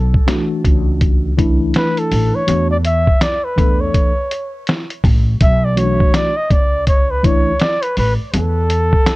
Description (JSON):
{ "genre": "hip hop, jazz-hop", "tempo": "82 BPM", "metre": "4/4", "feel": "swing 60% on 16ths", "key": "B minor", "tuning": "A4 = 440 Hz", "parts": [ { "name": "breathy flugelhorn", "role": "melody", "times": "0.0-9.2 s", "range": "A4 to E5", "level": "-19 LUFS", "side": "equal", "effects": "tape echo" }, { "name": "upright bass", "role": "bass", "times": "0.0-8.9 s", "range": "A1 to E2", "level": "-18 LUFS", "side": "equal", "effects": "none" }, { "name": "lo-fi sampler-style drum kit", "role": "drums", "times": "0.1-9.2 s", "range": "hi-hat, kick drum, snare drum", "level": "-15 LUFS", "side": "equal", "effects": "none" }, { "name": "mellow tine electric piano", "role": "accompaniment", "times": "0.3-7.5 s", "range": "E3 to A4", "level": "-19 LUFS", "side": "left 1 dB", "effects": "medium stereo tremolo" } ], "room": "light reverb", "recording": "worn, warbling old tape, cassette tape, warbly pitch drift", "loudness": "-13 LUFS", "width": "side -20 dB against mid", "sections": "0.0-9.2 A section", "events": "flugelhorn solo 0.0-9.2", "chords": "0.0 Bm9 (rootless); 2.5 E7sus4; 5.4 Bm9", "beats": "0.28 1.02 1.75 | 2.48 3.21 3.94 4.67 | 5.41 6.14 6.87 7.60 | 8.33 9.06" }